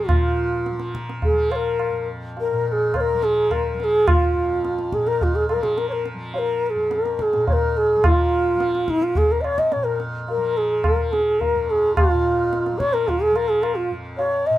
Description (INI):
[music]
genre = indian classical, Hindustani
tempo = 106 BPM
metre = 7/4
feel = straight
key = unclear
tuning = A4 = 443 Hz
[part]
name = mellow bansuri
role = melody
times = 0.0-14.6 s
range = Eb4+24c to Eb5+21c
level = -19 LUFS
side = equal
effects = none
[part]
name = tanpura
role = drone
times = 0.0-14.6 s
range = F2 to F3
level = -30 LUFS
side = equal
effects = none
[part]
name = tabla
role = percussion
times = 0.1-14.4 s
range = none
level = -23 LUFS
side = equal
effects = none
[sound]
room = moderate studio ambience, RT60 0.5 s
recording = minimal, uncompressed stereo recording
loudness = -18 LUFS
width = side -14 dB against mid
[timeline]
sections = 0.1-14.6 A section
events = speeding up 0.0-14.6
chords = none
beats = | 0.09 0.66 1.23 1.80 2.38 2.94 3.51 | 4.08 4.65 5.21 5.78 6.35 6.91 7.48 | 8.04 8.60 9.17 9.73 10.29 10.85 11.41 | 11.97 12.53 13.08 13.64 14.20